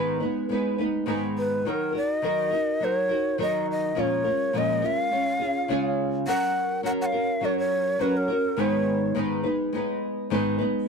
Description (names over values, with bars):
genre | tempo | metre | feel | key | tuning
acoustic pop | 104 BPM | 4/4 | swing 55% on 16ths | unclear | A4 = 440 Hz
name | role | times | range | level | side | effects
nylon-string guitar | accompaniment | 0.0-10.9 s | G#2 to B4 | -25 LUFS | equal | double-tracked left and right
breathy long shakuhachi | melody | 1.4-9.2 s | A#4 to F#5 | -26 LUFS | left 1 dB | none
room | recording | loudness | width
light reverb | dry, close 1970s-style studio recording | -23 LUFS | side -5 dB against mid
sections
0.0-6.3 A section; 6.3-10.9 B section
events
none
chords
0.0 G#m; 1.7 D#m; 4.0 A#m7; 5.1 C#; 6.3 F#; 8.6 G#m